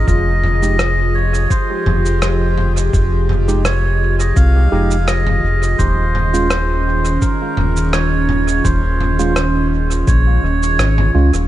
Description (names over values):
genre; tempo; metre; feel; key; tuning
ambient dub; 84 BPM; 4/4; swing 53% on 16ths; F minor; A4 = 442 Hz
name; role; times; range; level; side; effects
melodica; melody; 0.0-11.1 s; Bb4 to F5; -21 LUFS; right 2 dB; dub echo
airy breathy pad; sustained chords; 0.0-11.5 s; Eb3 to Eb5; -22 LUFS; right 1 dB; chorus
round analog bass; bass; 0.0-11.5 s; Eb1 to Db2; -15 LUFS; equal; none
electronic kick drum; drums; 0.1-10.2 s; none; -17 LUFS; equal; none
lo-fi sampler-style drum kit; drums; 0.1-11.5 s; rim click, shaker, toms; -23 LUFS; equal; dub echo
tine electric piano; stabs; 0.6-11.3 s; Ab3 to G4; -25 LUFS; right 3 dB; dub echo
room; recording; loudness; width
light reverb; nothing above 10.7 kHz; -13 LUFS; side -14 dB against mid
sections
0.0-11.5 A section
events
none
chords
0.1 Fm9; 5.8 Eb7sus4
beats
| 0.08 0.79 1.50 2.22 | 2.93 3.65 4.36 5.08 | 5.79 6.50 7.22 7.93 | 8.65 9.36 10.08 10.79